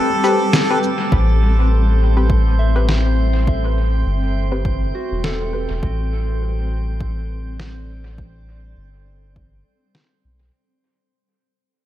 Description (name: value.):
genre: ambient dub.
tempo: 102 BPM.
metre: 4/4.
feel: swing 56% on 16ths.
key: A dorian.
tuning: A4 = 439 Hz.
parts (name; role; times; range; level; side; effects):
melodica; melody; 0.0-0.8 s; A4; -24 LUFS; left 1 dB; dub echo.
granular cloud pad; sustained chords; 0.0-10.5 s; G3 to E5; -26 LUFS; equal; built-in reverb.
soft synth bell; arpeggios; 0.0-7.0 s; F#4 to E5; -33 LUFS; right 1 dB; chorus, dub echo.
drifting glass-harmonics texture; texture; 0.0-10.5 s; C4 to A5; -28 LUFS; right 1 dB; chorus, built-in reverb.
filtered dub chord stab; stabs; 0.2-5.7 s; C4 to B4; -25 LUFS; left 3 dB; chorus, dub echo.
electronic cabasa and snare drum; drums; 0.2-10.1 s; none; -22 LUFS; equal; small room ambience, dub echo.
soft dub sub bass; bass; 1.1-10.5 s; E1 to B1; -18 LUFS; equal; tube saturation.
electronic kick drum; drums; 1.1-9.5 s; none; -21 LUFS; equal; small room ambience.
room: light reverb, digital ambience.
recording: none.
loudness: -15 LUFS.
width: side -13 dB against mid.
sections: 0.0-1.1 A section; 1.1-10.5 B section.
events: break 0.0-1.1; fade-out 1.1-10.5.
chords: 0.0 Am9.